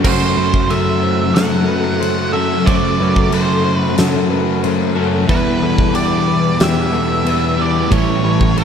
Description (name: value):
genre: rock, shoegaze and dream pop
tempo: 92 BPM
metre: 4/4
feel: straight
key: unclear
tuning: A4 = 440 Hz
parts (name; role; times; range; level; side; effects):
- octave-fuzz lead guitar; melody; 0.0-8.6 s; B4 to F#5; -21 LUFS; right 3 dB; distortion, analog delay
- string machine, full ensemble; sustained chords; 0.0-8.6 s; A4 to D6; -26 LUFS; equal; phaser, ensemble chorus
- direct-recorded clean electric guitar; arpeggios; 0.0-8.6 s; G4 to B5; -25 LUFS; left 12 dB; wide subtle chorus, analog delay
- crunchy overdriven guitar; riff; 0.0-8.6 s; F#2 to F#4; -23 LUFS; right 12 dB; reverse reverb
- crunchy overdriven guitar; riff; 0.0-8.6 s; A2 to F#4; -23 LUFS; right 1 dB; none
- thick fuzz guitar; riff; 0.0-8.6 s; E2 to A3; -21 LUFS; left 10 dB; distortion, analog chorus
- fuzz picked electric bass; bass; 0.0-8.6 s; A1 to F#2; -19 LUFS; right 1 dB; overdrive
- huge arena drum kit; drums; 0.0-8.6 s; crash cymbal, kick drum, snare drum; -20 LUFS; equal; none
room: light reverb, small room reverb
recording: dark, warm production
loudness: -13 LUFS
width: side -7 dB against mid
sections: 0.0-8.6 A section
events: none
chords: 0.0 F#m7b5; 5.3 Em7; 7.9 A7